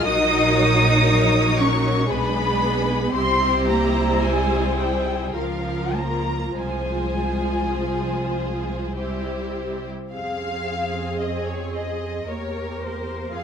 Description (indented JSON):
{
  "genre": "classical, slow romantic movement for string orchestra",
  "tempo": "49-60 BPM",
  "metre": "3/4",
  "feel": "rubato",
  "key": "F minor",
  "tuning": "A4 = 440 Hz",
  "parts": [
    { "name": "dark studio violin section", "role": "melody", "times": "0.0-13.4 s", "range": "C5 to Eb6", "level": "-25 LUFS", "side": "left 2 dB", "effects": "none" },
    { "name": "warm studio violin section", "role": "second line", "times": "0.0-13.4 s", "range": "G4 to F5", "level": "-27 LUFS", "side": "left 4 dB", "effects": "none" },
    { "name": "warm studio viola section", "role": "accompaniment", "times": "0.0-13.4 s", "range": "F3 to Ab4", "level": "-27 LUFS", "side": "right 2 dB", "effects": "none" },
    { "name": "rich studio double bass section", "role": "bass", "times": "0.0-13.4 s", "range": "Bb1 to F2", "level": "-26 LUFS", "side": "right 1 dB", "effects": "none" },
    { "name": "warm studio cello section", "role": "bass", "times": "0.0-13.4 s", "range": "F3 to Bb4", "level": "-27 LUFS", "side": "right 2 dB", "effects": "none" }
  ],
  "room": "light reverb",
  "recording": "close, detailed microphones",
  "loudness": "-20 LUFS",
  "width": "side -7 dB against mid",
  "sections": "0.0-10.1 A section; 10.1-13.4 B section",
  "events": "none",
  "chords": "0.0 Gb/Bb; 2.1 Bm6; 3.1 C; 5.4 Bbm/Db; 6.6 Fm/C; 9.0 C; 10.1 Fm; 12.3 C7/E"
}